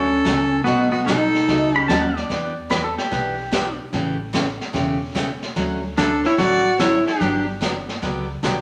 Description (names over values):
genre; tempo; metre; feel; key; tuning
country, western swing; 147 BPM; 4/4; swing 67% on 8ths; D major; A4 = 440 Hz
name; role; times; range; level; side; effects
clean lap steel guitar; melody; 0.0-2.1, 6.0-7.5 s; B3 to F#4; -21 LUFS; equal; none
clear fiddle; second line; 0.0-2.1, 6.0-7.5 s; F#4 to D5; -28 LUFS; equal; none
picked steel-string acoustic guitar; accompaniment; 0.0-8.6 s; B2 to G4; -27 LUFS; equal; none
upright bass; bass; 0.0-8.6 s; E1 to E2; -33 LUFS; equal; none
jazz brush drum kit; drums; 0.3-8.6 s; brushed snare drum, hi-hat, kick drum, snare drum; -29 LUFS; equal; vintage 12-bit sampler grit
pedal steel guitar; second line; 1.8-3.8 s; G4 to B5; -26 LUFS; equal; none
room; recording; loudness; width
wet large studio reverb, RT60 1.0 s; none; -21 LUFS; mono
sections
0.0-8.6 A section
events
none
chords
0.0 Dmaj7; 0.7 B7; 2.3 Em7; 3.9 A7; 5.6 Dmaj7; 7.2 Gmaj7